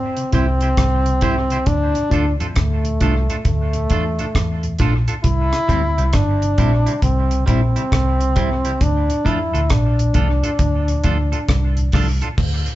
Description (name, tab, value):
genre	roots reggae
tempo	67 BPM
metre	4/4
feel	swing 64% on 16ths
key	D minor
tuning	A4 = 440 Hz
part	clear trombone	melody	0.0-11.9 s	A3 to E4	-22 LUFS	equal	none
part	mellow tonewheel organ	accompaniment	0.2-12.7 s	D2 to F4	-27 LUFS	left 2 dB	slow rotary speaker
part	deep reggae drum kit	drums	0.2-12.8 s	crash cymbal, hi-hat, kick drum, rim click	-21 LUFS	equal	none
part	clean electric guitar	accompaniment	0.3-12.3 s	G3 to C5	-28 LUFS	right 4 dB	dub echo
part	vintage muted fingered electric bass	bass	0.3-12.6 s	G1 to F2	-19 LUFS	equal	none
room	moderate large studio reverb, RT60 0.9 s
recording	band playing live in one room, nothing above 7.8 kHz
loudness	-15 LUFS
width	side -15 dB against mid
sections	0.0-12.4 A section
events	none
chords	0.0 C; 1.7 Dm; 5.2 C; 8.8 Dm